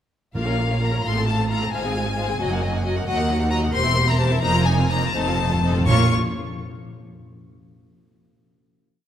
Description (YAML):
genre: quick classical-period movement for symphony orchestra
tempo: 80-90 BPM (dotted quarters)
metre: 6/8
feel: straight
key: Bb minor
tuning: A4 = 438 Hz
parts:
  - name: timpani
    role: percussion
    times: 0.3-1.0, 5.1-6.1 s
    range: F2 to Bb2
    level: -27 LUFS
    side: left 1 dB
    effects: none
  - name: rich chamber violin section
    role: melody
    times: 0.4-6.1 s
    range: F5 to Db6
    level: -24 LUFS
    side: left 5 dB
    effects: none
  - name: rich chamber violin section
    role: second line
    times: 0.4-6.1 s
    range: Eb4 to A5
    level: -30 LUFS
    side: left 4 dB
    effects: none
  - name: rich studio viola section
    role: accompaniment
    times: 0.4-6.1 s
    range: Gb3 to Bb4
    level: -28 LUFS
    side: right 1 dB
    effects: none
  - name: rich chamber double bass section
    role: bass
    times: 0.4-6.1 s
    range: E1 to Eb2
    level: -24 LUFS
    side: right 2 dB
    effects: none
  - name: warm chamber cello section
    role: bass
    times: 0.4-6.1 s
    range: Eb2 to Bb2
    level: -25 LUFS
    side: right 2 dB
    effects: none
room: wet concert hall reverb, RT60 2.0 s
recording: none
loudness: -19 LUFS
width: side -10 dB against mid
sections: 0.4-5.9 A section; 5.9-7.3 final chord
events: slowing down 2.4-5.9; timpani fill 5.1-5.9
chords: 0.4 Bbm; 1.0 F/A; 1.7 Fm/Ab; 2.4 Ebm/Gb; 3.1 Ebm; 3.7 C7/E; 4.4 F7sus4; 5.1 F7; 5.9 Bbm